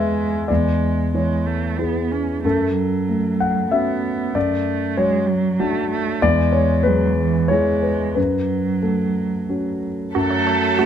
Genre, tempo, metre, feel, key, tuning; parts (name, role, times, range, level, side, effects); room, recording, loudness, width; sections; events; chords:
neoclassical piano and strings; 93 BPM; 3/4; rubato; F# minor; A4 = 444 Hz
muted cello; second line; 0.0-10.9 s; E3 to C#4; -23 LUFS; right 6 dB
dark concert grand piano; accompaniment; 0.0-10.9 s; E2 to G#5; -19 LUFS; left 2 dB
muted chamber violin section; melody; 10.2-10.9 s; A4; -20 LUFS; left 1 dB
muted viola; accompaniment; 10.2-10.9 s; F#3 to G#3; -26 LUFS; right 4 dB
soft additive organ-like pad; sustained chords; 10.2-10.9 s; F#3 to A5; -26 LUFS; right 2 dB; ensemble chorus, built-in reverb
hollow square pluck; arpeggios; 10.2-10.9 s; F#4 to C#5; -24 LUFS; right 10 dB; chorus, slapback echo
light reverb; -17 LUFS; side -9 dB against mid
0.0-10.2 A section
0.5 C#m/E; 2.4 F#m; 4.4 D/F#; 6.2 E; 8.2 F#m